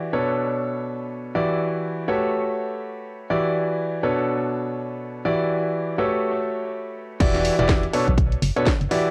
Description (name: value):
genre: piano house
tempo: 123 BPM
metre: 4/4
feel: swing 58% on 16ths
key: E dorian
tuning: A4 = 439 Hz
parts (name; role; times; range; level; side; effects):
- bright concert grand piano; riff; 0.0-9.1 s; B2 to D5; -25 LUFS; equal; sidechain pumping, low-pass filter, cassette tape, tape echo
- organ-like FM bass; bass; 7.2-8.9 s; E1 to B1; -26 LUFS; equal; sidechain pumping
- electronic kick drum; drums; 7.2-8.8 s; none; -23 LUFS; equal; none
- house drum kit; drums; 7.2-9.0 s; crash cymbal, hi-hat, snare drum; -30 LUFS; equal; low-pass filter on hats, low-pass filter on cymbals, low-pass filter on snare, low-pass filter on room
room: moderate studio reverb, RT60 0.6 s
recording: home recording on cassette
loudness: -23 LUFS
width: mono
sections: 0.0-7.2 A section; 7.2-9.1 B section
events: drop 7.2-9.1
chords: 0.1 Bm9; 1.3 Em9; 2.1 A13; 3.3 Em9; 4.0 Bm9; 5.3 Em9; 6.0 A13; 7.2 Em9; 7.9 Bm9